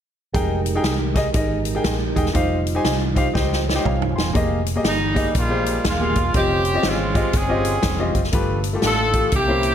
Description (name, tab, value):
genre	uptempo gospel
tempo	120 BPM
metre	4/4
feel	swing 63% on 8ths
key	F minor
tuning	A4 = 438 Hz
part	warm concert grand piano	accompaniment	0.3-9.7 s	G2 to C6	-24 LUFS	left 2 dB	none
part	percussive tonewheel organ	sustained chords	0.3-4.6 s	G3 to Ab5	-27 LUFS	right 5 dB	slow rotary speaker, chorus vibrato
part	hollow-body short-scale fingered electric bass	bass	0.3-9.7 s	Eb1 to Db2	-25 LUFS	equal	none
part	swinging big-band drum kit	drums	0.3-9.7 s	hi-hat, kick drum, snare drum, toms	-22 LUFS	equal	none
part	clear horn section	melody	4.9-9.7 s	G3 to A4	-21 LUFS	right 1 dB	none
room	light reverb, studio ambience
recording	none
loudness	-18 LUFS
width	side -9 dB against mid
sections	0.3-4.3 A section; 4.3-9.7 B section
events	drum fill 3.3-4.3; tonewheel organ fill 3.3-4.3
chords	0.3 Fm11; 2.3 Dbmaj9#11/F; 4.3 Fm11; 6.3 Dbmaj9#11/F; 8.3 G9